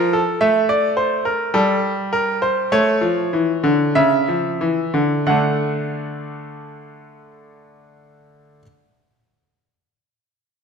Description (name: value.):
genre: classical, baroque-style two-part invention for grand piano.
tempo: 45-54 BPM.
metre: 4/4.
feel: straight.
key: unclear.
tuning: A4 = 440 Hz.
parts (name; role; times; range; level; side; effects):
bright grand piano; solo; 0.0-8.6 s; C#3 to F#5; -17 LUFS; equal; none.
room: wet recital hall reverb, RT60 1.6 s.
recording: none.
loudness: -16 LUFS.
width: side -6 dB against mid.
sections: 0.0-5.3 A section; 5.3-10.6 B section.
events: slowing down 0.0-5.3.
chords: 0.4 N.C.; 2.7 A (rootless); 5.3 D.